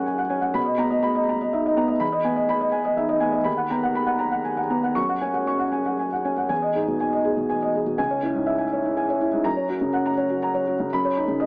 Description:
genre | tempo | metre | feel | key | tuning
neoclassical minimalist piano | 123 BPM | 3/4 | rubato | B major | A4 = 440 Hz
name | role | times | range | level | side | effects
felt-muted upright piano | solo | 0.0-11.5 s | C#2 to C#6 | -20 LUFS | equal | none
room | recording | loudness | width
light reverb | AM radio sound | -20 LUFS | side -33 dB against mid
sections
0.0-6.5 A section; 6.5-11.5 B section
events
none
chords
0.0 F#sus2; 0.6 Bmaj7; 2.0 Emaj7; 3.5 Bmaj7/D#; 5.0 F#sus2; 6.5 Emaj7; 8.0 C#m; 9.5 F#; 10.9 Badd9/F#

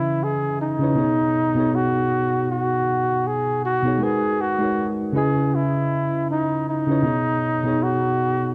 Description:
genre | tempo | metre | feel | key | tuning
hip hop | 79 BPM | 4/4 | swing 59% on 16ths | B major | A4 = 445 Hz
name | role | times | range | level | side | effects
mellow flugelhorn | melody | 0.0-8.5 s | D#4 to G#4 | -24 LUFS | equal | low-pass filter
mellow tine electric piano | accompaniment | 0.0-8.5 s | B2 to D#5 | -25 LUFS | equal | cassette tape, low-pass filter
room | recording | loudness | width
moderate echo chamber reverb, RT60 1.7 s, small room ambience | dark, warm production | -22 LUFS | mono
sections
0.0-8.5 A section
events
none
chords
0.0 C#m9; 1.0 B69; 4.0 G#m9; 5.1 C#m9; 7.0 B69

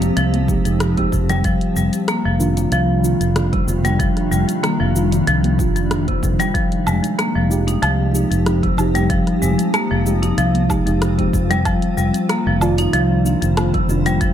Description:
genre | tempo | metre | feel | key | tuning
organic downtempo | 94 BPM | 4/4 | swing 53% on 16ths | F dorian | A4 = 442 Hz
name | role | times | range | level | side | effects
granular cloud pad | sustained chords | 0.0-14.3 s | C3 to C5 | -24 LUFS | left 1 dB | built-in reverb, sidechain pumping
marimba with hard mallets | arpeggios | 0.0-14.3 s | C3 to Eb4 | -20 LUFS | left 1 dB | vintage 12-bit sampler grit, ping-pong delay
fretless electric bass | bass | 0.0-14.3 s | F1 to C2 | -20 LUFS | equal | sidechain pumping
deep house drum kit | drums | 0.0-14.3 s | cabasa, hi-hat, rim click, woodblock | -26 LUFS | equal | none
bongos and congas | percussion | 0.0-14.2 s | none | -28 LUFS | right 5 dB | none
muted felt-like synth keys | accompaniment | 0.5-14.3 s | Eb3 to D5 | -23 LUFS | right 2 dB | chorus, sidechain pumping, low-pass filter, ping-pong delay
electronic kick drum | drums | 0.5-14.3 s | none | -22 LUFS | equal | none
room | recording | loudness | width
moderate echo chamber reverb, RT60 1.9 s | none | -15 LUFS | side -10 dB against mid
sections
0.0-14.3 A section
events
filter sweep on synth keys 0.0-14.3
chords
0.0 Fm9; 1.4 Cm11/F; 6.5 Fm9; 11.7 Cm11/F

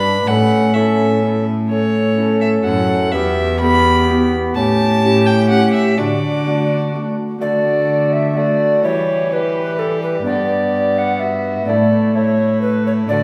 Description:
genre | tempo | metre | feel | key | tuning
classical, renaissance-style consort dance | 126 BPM | 3/4 | straight | D major | A4 = 440 Hz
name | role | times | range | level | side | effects
rich violin | melody | 0.0-13.2 s | E4 to B5 | -25 LUFS | equal | none
mellow tenor recorder | second line | 0.0-13.2 s | F#4 to F#5 | -21 LUFS | equal | none
Celtic harp | accompaniment | 0.0-13.2 s | E2 to B4 | -25 LUFS | equal | none
warm bassoon | accompaniment | 0.0-13.2 s | G3 to D4 | -25 LUFS | equal | none
rich cello | bass | 0.0-13.2 s | E2 to E3 | -21 LUFS | equal | none
room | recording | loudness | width
wet recital hall reverb, RT60 1.3 s | recorded in a church or concert hall | -16 LUFS | mono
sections
0.0-7.4 A section; 7.4-13.2 B section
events
none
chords
0.3 A; 3.1 Em; 4.6 A7; 6.0 D; 8.8 Em; 10.3 G; 11.7 Asus4; 12.2 A

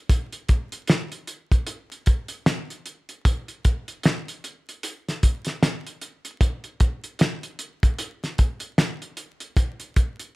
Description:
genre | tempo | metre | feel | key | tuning
R&B | 76 BPM | 4/4 | swing 59% on 16ths | none | none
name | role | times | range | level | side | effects
cloth-damped thuddy drum kit | drums | 0.1-10.3 s | finger snaps, hi-hat, kick drum, snare drum | -20 LUFS | equal | none
room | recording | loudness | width
little or no reverb | vinyl crackle | -22 LUFS | side -22 dB against mid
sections
0.0-10.4 A section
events
none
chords
none

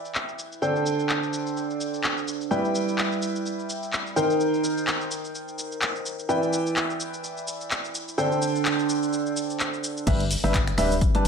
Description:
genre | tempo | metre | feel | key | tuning
piano house | 127 BPM | 4/4 | swing 56% on 16ths | G major | A4 = 440 Hz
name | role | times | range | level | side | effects
clear upright piano | riff | 0.0-11.3 s | D3 to A5 | -25 LUFS | right 2 dB | analog chorus, sidechain pumping, tape echo
punchy analog drum machine | drums | 0.1-11.3 s | cabasa, crash cymbal, finger snaps, handclaps, hi-hat | -29 LUFS | left 1 dB | low-pass filter on perc, studio reverb, low-pass filter on snare, low-pass filter on hats, low-pass filter on cymbals
organ-like FM bass | bass | 10.1-11.3 s | D1 to G1 | -27 LUFS | left 1 dB | sidechain pumping
electronic kick drum | drums | 10.1-11.1 s | none | -24 LUFS | left 1 dB | studio reverb
room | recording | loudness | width
wet plate reverb, RT60 0.9 s | dreamy mix soaked in reverb | -23 LUFS | side -6 dB against mid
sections
0.0-10.1 A section; 10.1-11.3 B section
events
drop 10.1-11.3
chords
0.0 Em7; 0.6 D7sus4; 2.5 G6; 4.2 Eb6; 6.3 Em7; 8.2 D7sus4; 10.1 G6

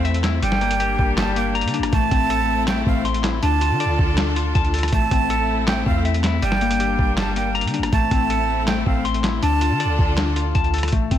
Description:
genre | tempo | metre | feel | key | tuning
hip hop, trap | 160 BPM | 4/4 | half-time | A phrygian | A4 = 440 Hz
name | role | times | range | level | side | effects
breathy bright jazz flute | second line | 0.0-10.1 s | F5 to A5 | -24 LUFS | right 6 dB | tape echo
clear symphonic string section | sustained chords | 0.0-10.9 s | D3 to A4 | -29 LUFS | left 2 dB | none
clean electric guitar | arpeggios | 0.0-11.2 s | G3 to C6 | -24 LUFS | left 8 dB | wide subtle chorus, low-pass filter, tape echo
warm 808-style bass | bass | 0.0-11.2 s | G1 to D3 | -23 LUFS | equal | none
lo-fi sampler-style drum kit | drums | 0.1-11.2 s | handclaps, hi-hat, kick drum, rim click, snare drum | -23 LUFS | equal | none
room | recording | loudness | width
little or no reverb | none | -17 LUFS | side -10 dB against mid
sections
0.0-10.9 A section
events
none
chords
0.4 Gm; 1.9 Am; 3.4 Dm; 4.9 Am; 6.4 Gm; 7.9 Am; 9.4 Dm

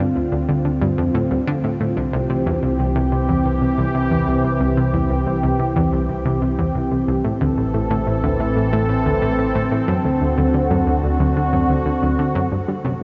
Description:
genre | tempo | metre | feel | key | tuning
ambient | 91 BPM | 4/4 | straight | unclear | A4 = 440 Hz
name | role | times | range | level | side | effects
sweeping resonant pad | sustained chords | 0.0-13.0 s | D3 to A4 | -22 LUFS | equal | lush chorus, shimmer reverb
analog pluck | riff | 0.0-12.9 s | C2 to G3 | -23 LUFS | equal | chorus, analog delay
fat analog bass | bass | 0.0-12.5 s | A1 to D2 | -28 LUFS | equal | none
room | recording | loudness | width
wet huge ambient reverb, RT60 7.6 s | cassette tape, nothing above 7.5 kHz | -19 LUFS | mono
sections
0.0-12.5 A section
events
none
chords
0.0 Dm7; 2.0 C; 7.2 Am; 9.9 D7; 12.5 Gm7

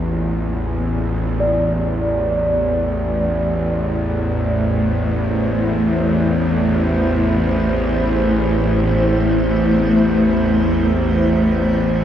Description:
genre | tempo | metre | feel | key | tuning
dark ambient drone | free time | none | none | A phrygian | A4 = 440 Hz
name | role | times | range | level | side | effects
granular cloud pad | sustained chords | 0.2-12.0 s | A3 to D5 | -20 LUFS | equal | built-in reverb
bowed-like drone | drone | 0.0-12.0 s | A1 to E2 | -18 LUFS | equal | built-in reverb
bronze singing bowl | texture | 1.4-12.0 s | D5 | -25 LUFS | equal | none
room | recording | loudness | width
wet huge ambient reverb, RT60 7.8 s | none | -15 LUFS | side -10 dB against mid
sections
0.0-1.4 A section; 1.4-12.0 B section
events
none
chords
0.0 Bb/A; 1.4 Am

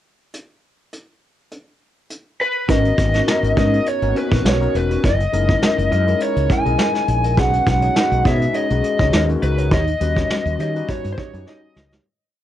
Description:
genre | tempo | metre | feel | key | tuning
polished 1980s jazz-funk pop | 102 BPM | 4/4 | swing 54% on 16ths | G# minor | A4 = 441 Hz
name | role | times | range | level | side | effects
vintage brush drum kit | drums | 0.3-12.0 s | hi-hat, kick drum, snare drum | -20 LUFS | equal | cassette tape
lead guitar through a small cranked amp | melody | 2.4-11.9 s | B4 to G#5 | -21 LUFS | equal | overdrive, cassette tape
overdriven tine electric piano | accompaniment | 2.7-12.1 s | G3 to C#5 | -24 LUFS | left 6 dB | lush chorus, cassette tape
mellow electric guitar | riff | 2.7-12.1 s | C#4 to E5 | -26 LUFS | right 6 dB | tube saturation, lush chorus, cassette tape
mellow fretless electric bass | bass | 2.7-12.0 s | E1 to D#3 | -20 LUFS | equal | none
room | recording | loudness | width
moderate booth ambience, RT60 0.2 s | home recording on cassette | -15 LUFS | side -12 dB against mid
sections
0.3-2.7 pickup bar; 2.7-12.1 verse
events
fade-out 9.7-12.1; drum fill 11.5-12.1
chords
0.3 N.C.; 2.7 G#m11; 5.0 F#13; 7.4 B69; 9.7 D#7alt

